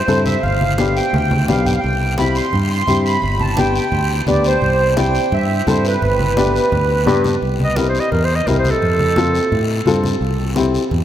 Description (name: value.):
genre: latin, cumbia.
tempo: 172 BPM.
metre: 4/4.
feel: straight.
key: C major.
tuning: A4 = 439 Hz.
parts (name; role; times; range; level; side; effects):
accordion; second line; 0.0-7.2 s; B4 to C6; -19 LUFS; right 2 dB; light tremolo tuning.
warm upright piano; accompaniment; 0.1-10.8 s; B3 to A4; -20 LUFS; left 4 dB; none.
fingered electric bass; bass; 0.1-11.0 s; G1 to A2; -19 LUFS; equal; none.
congas; percussion; 0.1-11.0 s; none; -23 LUFS; right 1 dB; none.
guiro; percussion; 0.1-11.0 s; none; -31 LUFS; left 5 dB; none.
clear clarinet; melody; 7.6-9.7 s; A4 to Eb5; -19 LUFS; right 1 dB; none.
room: wet cathedral reverb, RT60 5.9 s.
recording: in a vast, echoing space.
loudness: -14 LUFS.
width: side -11 dB against mid.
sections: 0.0-7.4 A section; 7.4-11.0 B section.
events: accordion solo 0.0-7.4; drum fill 1.1-1.8; clarinet solo 7.4-11.0.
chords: 0.4 G7; 1.8 C; 3.2 G; 4.6 C; 6.0 G; 7.4 C; 8.8 F; 10.2 C.